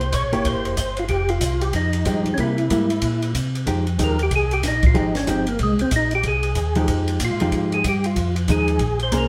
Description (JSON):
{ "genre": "soul jazz organ trio", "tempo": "187 BPM", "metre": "4/4", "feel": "swing 62% on 8ths", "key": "F minor", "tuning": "A4 = 440 Hz", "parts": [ { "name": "percussive tonewheel organ", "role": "melody", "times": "0.0-9.3 s", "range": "Ab3 to Db5", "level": "-25 LUFS", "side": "equal", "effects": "slow rotary speaker, chorus vibrato" }, { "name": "mellow tonewheel organ", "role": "bass", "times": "0.0-9.3 s", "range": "E1 to C3", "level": "-26 LUFS", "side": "equal", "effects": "slow rotary speaker" }, { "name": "compact cocktail drum kit", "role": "drums", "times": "0.0-9.2 s", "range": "hi-hat, kick drum, ride cymbal, snare drum", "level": "-28 LUFS", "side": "equal", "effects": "none" }, { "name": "hollow-body jazz guitar", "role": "accompaniment", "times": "0.3-9.3 s", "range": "F3 to C5", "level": "-26 LUFS", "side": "equal", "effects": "none" } ], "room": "moderate studio reverb, RT60 0.9 s", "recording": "band playing live in one room", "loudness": "-21 LUFS", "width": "mono", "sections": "0.0-3.7 A section; 3.7-9.3 B section", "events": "tonewheel organ solo 3.7-9.3", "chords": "0.0 C7; 1.1 Fm9; 2.4 C7; 3.7 Fm9" }